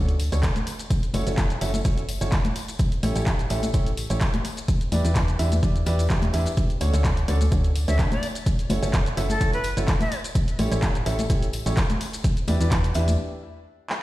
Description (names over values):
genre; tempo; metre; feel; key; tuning
piano house; 127 BPM; 4/4; swing 53% on 16ths; E dorian; A4 = 439 Hz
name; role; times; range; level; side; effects
clear upright piano; riff; 0.0-13.1 s; C#4 to E5; -31 LUFS; right 1 dB; sidechain pumping, ping-pong delay
solid FM bass; bass; 0.0-13.2 s; F#1 to E2; -23 LUFS; equal; tube saturation, sidechain pumping
punchy analog drum machine; drums; 0.1-14.0 s; handclaps, hi-hat, shaker; -32 LUFS; equal; none
tambourine and congas; percussion; 0.2-13.2 s; none; -32 LUFS; left 2 dB; none
electronic kick drum; drums; 0.4-12.8 s; none; -23 LUFS; equal; overdrive
breathy bright jazz flute; melody; 7.9-10.2 s; A4 to E5; -30 LUFS; equal; ping-pong delay
room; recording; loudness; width
light reverb, small room ambience; played on a big sound system in a bare room, stone room reverb; -21 LUFS; side -16 dB against mid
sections
0.0-14.0 A section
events
break 13.2-14.0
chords
0.0 Dmaj7; 0.7 F#m7; 2.6 A7; 4.7 Em7; 6.6 Dmaj7; 8.2 F#m7; 10.1 A7; 12.2 Em7